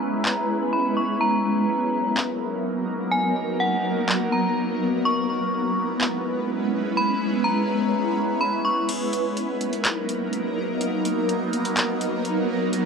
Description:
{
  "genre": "hip hop, atmospheric cloud-rap",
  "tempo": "125 BPM",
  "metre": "4/4",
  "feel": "half-time",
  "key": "unclear",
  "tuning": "A4 = 442 Hz",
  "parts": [
    { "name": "metallic FM bell", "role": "melody", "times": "0.0-8.9 s", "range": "F#5 to C#6", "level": "-26 LUFS", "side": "left 1 dB", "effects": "chorus, low-pass filter, ping-pong delay" },
    { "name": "shimmering ambient pad", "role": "sustained chords", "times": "0.0-12.9 s", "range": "F#3 to B4", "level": "-23 LUFS", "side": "equal", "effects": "chorus, built-in reverb, phaser, low-pass filter" },
    { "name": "booming analog drum machine", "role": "drums", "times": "0.3-12.8 s", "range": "crash cymbal, handclaps, hi-hat", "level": "-25 LUFS", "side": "equal", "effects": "none" }
  ],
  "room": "light reverb",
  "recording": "dark, warm production",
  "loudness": "-21 LUFS",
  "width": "side -5 dB against mid",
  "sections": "0.0-8.9 A section; 8.9-12.9 B section",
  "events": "break 0.0-1.2; filter sweep 0.0-8.9; kick muted 8.9-12.9",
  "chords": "0.0 C#m7; 1.2 Bmaj7; 5.0 C#m7; 8.9 Bmaj7"
}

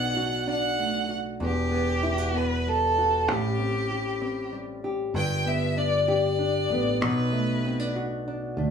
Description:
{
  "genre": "six-eight pop ballad",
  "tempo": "64 BPM (dotted quarters)",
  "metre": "6/8",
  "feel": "straight",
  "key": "G major",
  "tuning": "A4 = 440 Hz",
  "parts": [
    { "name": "bright violin", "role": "melody", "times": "0.0-7.9 s", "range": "G4 to G5", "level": "-27 LUFS", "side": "equal", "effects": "none" },
    { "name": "nylon-string guitar", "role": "accompaniment", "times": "0.0-8.7 s", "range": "E2 to G4", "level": "-28 LUFS", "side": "equal", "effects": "none" },
    { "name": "fingered electric bass", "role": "bass", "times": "0.0-8.7 s", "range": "E1 to D2", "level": "-31 LUFS", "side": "equal", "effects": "none" }
  ],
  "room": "wet studio reverb, RT60 0.6 s",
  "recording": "band playing live in one room, small room reverb",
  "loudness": "-24 LUFS",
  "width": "side -7 dB against mid",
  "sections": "0.0-5.2 A section; 5.2-8.7 B section",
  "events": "none",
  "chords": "0.0 Bm7; 1.4 Emadd9; 3.3 Am7; 5.2 G; 7.0 Bm7"
}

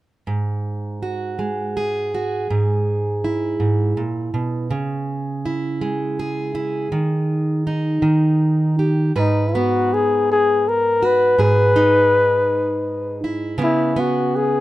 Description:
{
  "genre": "acoustic folk-pop ballad",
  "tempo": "54 BPM (dotted quarters)",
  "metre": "6/8",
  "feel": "straight",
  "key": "G# minor",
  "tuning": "A4 = 440 Hz",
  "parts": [
    { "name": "fingerpicked plugged-in steel-string acoustic guitar", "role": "accompaniment", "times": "0.3-14.6 s", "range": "G#2 to B4", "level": "-20 LUFS", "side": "right 2 dB", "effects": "none" },
    { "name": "breathy flugelhorn", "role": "melody", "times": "9.2-14.6 s", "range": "D#4 to B4", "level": "-16 LUFS", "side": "left 2 dB", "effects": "none" }
  ],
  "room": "light reverb",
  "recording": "close, detailed microphones",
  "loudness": "-17 LUFS",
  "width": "side -16 dB against mid",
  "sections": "0.3-9.2 A section; 9.2-14.6 B section",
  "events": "none",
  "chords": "0.3 F#sus2/G#; 2.5 E/G#; 4.7 C#m; 6.9 D#sus4; 8.0 D#; 9.2 G#m7; 11.4 Emaj7/G#; 13.6 C#m7"
}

